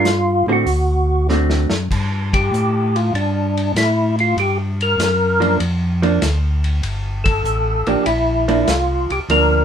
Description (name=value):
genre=soul jazz organ trio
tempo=98 BPM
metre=4/4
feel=swing 69% on 8ths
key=G dorian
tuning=A4 = 440 Hz
part: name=percussive tonewheel organ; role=melody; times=0.0-9.6 s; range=D4 to Bb4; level=-18 LUFS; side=left 1 dB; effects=slow rotary speaker, chorus vibrato
part: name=vintage hollow-body jazz guitar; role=accompaniment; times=0.0-1.7, 5.4-9.6 s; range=D3 to F#4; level=-18 LUFS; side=right 4 dB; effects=none
part: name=mellow tonewheel organ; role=bass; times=0.0-9.6 s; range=G1 to A2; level=-19 LUFS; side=equal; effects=overdrive, chorus vibrato, slow rotary speaker
part: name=vintage drum kit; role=drums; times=0.1-9.5 s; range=crash cymbal, hi-hat, kick drum, ride cymbal, snare drum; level=-24 LUFS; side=equal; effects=none
room=moderate studio ambience, RT60 0.5 s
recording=minimal, uncompressed stereo recording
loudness=-15 LUFS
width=side -8 dB against mid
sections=0.0-1.9 A section; 1.9-9.6 A section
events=drum fill 1.3-1.9; band accent 2.2-2.5, 7.1-7.4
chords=0.0 G7(no3); 0.7 D7; 1.9 Gm7